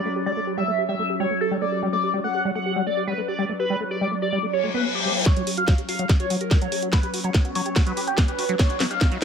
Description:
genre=psychedelic trance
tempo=144 BPM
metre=4/4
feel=straight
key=unclear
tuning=A4 = 440 Hz
part: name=overdriven synth lead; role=melody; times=0.0-9.2 s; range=G4 to F#5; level=-26 LUFS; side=equal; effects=distortion, phaser, sidechain pumping, digital delay
part: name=evolving wavetable pad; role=sustained chords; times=0.0-9.2 s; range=F#3 to C#4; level=-30 LUFS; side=equal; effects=chorus, built-in reverb, sidechain pumping
part: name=liquid acid bass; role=riff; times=0.1-9.2 s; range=F#3 to G4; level=-28 LUFS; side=equal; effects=chorus, auto-pan, sidechain pumping, digital delay
part: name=reverse cymbal and riser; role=sound effects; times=4.6-9.2 s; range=none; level=-30 LUFS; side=left 4 dB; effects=none
part: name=electronic kick drum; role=drums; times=5.3-9.1 s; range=none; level=-19 LUFS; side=equal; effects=none
part: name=garage drum kit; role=drums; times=5.3-9.2 s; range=hi-hat, snare drum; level=-26 LUFS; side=equal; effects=none
room=light reverb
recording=none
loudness=-20 LUFS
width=side -7 dB against mid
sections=0.0-5.3 A section; 5.3-9.2 B section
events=reverse cymbal 4.6-5.3; build-up 5.3-9.2; drum fill 5.3-9.2; filter sweep on acid bass 5.3-9.2; filter sweep on analog synth lead 5.3-9.2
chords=0.0 Gmaj7(no3)/F#; 5.3 F#5

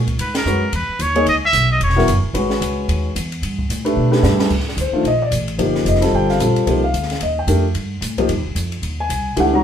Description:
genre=modal jazz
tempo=222 BPM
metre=4/4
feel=swing 59% on 8ths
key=C dorian from 4.5 s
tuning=A4 = 442 Hz
part: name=upright bass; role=bass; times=0.0-9.6 s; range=E1 to B2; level=-20 LUFS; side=right 1 dB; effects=none
part: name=open jazz drum kit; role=drums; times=0.1-9.4 s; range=crash cymbal, hi-hat, kick drum, ride cymbal, snare drum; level=-26 LUFS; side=equal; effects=none
part: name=trumpet with straight mute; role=melody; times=0.2-2.2 s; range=A#4 to E5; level=-18 LUFS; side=right 1 dB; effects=none
part: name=warm concert grand piano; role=accompaniment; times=0.5-9.6 s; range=Eb3 to Bb5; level=-18 LUFS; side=left 2 dB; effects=none
room=wet studio reverb, RT60 0.7 s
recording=band playing live in one room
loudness=-16 LUFS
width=side -9 dB against mid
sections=0.0-4.5 A section; 4.5-9.6 B section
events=band accent 0.3; drum fill 4.0-4.5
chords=0.2 C#m9; 3.4 G; 4.5 Cm11; 8.8 Ebm11

